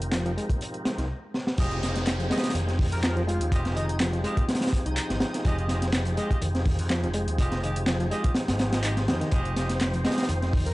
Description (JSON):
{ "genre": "breakbeat, breaks", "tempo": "124 BPM", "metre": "4/4", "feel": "swing 54% on 16ths", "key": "F minor", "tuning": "A4 = 439 Hz", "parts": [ { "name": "tonewheel organ", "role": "sustained chords", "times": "0.0-10.7 s", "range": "F3 to C5", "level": "-34 LUFS", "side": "equal", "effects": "chorus vibrato, stopped rotary speaker, sidechain pumping" }, { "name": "overdriven picked electric bass", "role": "bass", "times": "0.0-10.7 s", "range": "F1 to F2", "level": "-28 LUFS", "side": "equal", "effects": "transformer saturation" }, { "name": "punchy analog drum machine", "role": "drums", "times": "0.0-10.7 s", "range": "handclaps, hi-hat", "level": "-37 LUFS", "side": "equal", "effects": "overdrive" }, { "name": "barky reed electric piano", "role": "riff", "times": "0.1-10.7 s", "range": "Eb3 to F4", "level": "-34 LUFS", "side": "equal", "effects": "fast tremolo, vintage 12-bit sampler grit, tape echo" }, { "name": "crunchy breakbeat drum kit", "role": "drums", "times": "0.1-10.7 s", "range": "hi-hat, kick drum, snare drum", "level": "-27 LUFS", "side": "equal", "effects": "none" }, { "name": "clear horn section", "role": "stabs", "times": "1.6-10.3 s", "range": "Ab3 to Eb5", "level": "-35 LUFS", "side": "right 1 dB", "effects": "tape echo" }, { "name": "downlifter", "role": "sound effects", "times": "1.6-5.5 s", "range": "none", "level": "-40 LUFS", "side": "equal", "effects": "none" }, { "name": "airy dreamy lead", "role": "melody", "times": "2.9-5.5, 10.7 s", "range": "Eb4 to Bb4", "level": "-36 LUFS", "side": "left 1 dB", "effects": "chorus, old record sound, tape echo" } ], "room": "little or no reverb", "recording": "dry, gritty hardware recording, cassette tape, nothing above 10.9 kHz", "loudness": "-24 LUFS", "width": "side -19 dB against mid", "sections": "0.0-1.6 A section; 1.6-10.7 B section", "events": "drum fill 1.3; drop 1.6-10.7", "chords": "0.0 Fm9" }